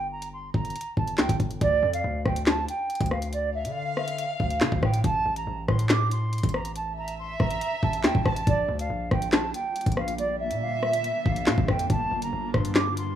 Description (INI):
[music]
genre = hip hop, drill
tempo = 140 BPM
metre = 4/4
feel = half-time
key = D minor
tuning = A4 = 440 Hz
[part]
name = silver concert flute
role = melody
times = 0.0-13.2 s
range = D5 to D6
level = -29 LUFS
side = right 3 dB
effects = digital delay
[part]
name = hard-hitting 808-style bass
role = bass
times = 0.0-13.2 s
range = G1 to D3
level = -30 LUFS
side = equal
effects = none
[part]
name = drill drum kit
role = drums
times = 0.2-13.1 s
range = handclaps, hi-hat, kick drum, rim click, snare drum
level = -24 LUFS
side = left 1 dB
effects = overdrive
[part]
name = warm chamber violin section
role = second line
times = 3.5-11.9 s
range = E5 to A5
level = -32 LUFS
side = right 2 dB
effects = digital delay
[part]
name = granular cloud pad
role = sustained chords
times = 8.9-13.2 s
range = D3 to F4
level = -34 LUFS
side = left 1 dB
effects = built-in reverb
[sound]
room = light reverb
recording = rough home demo mix, small room reverb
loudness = -23 LUFS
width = side -10 dB against mid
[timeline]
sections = 0.0-1.6 A section; 1.6-13.2 B section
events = none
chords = 0.0 Gm; 1.6 Dm; 5.0 Am; 8.5 Bb6; 11.9 Gm7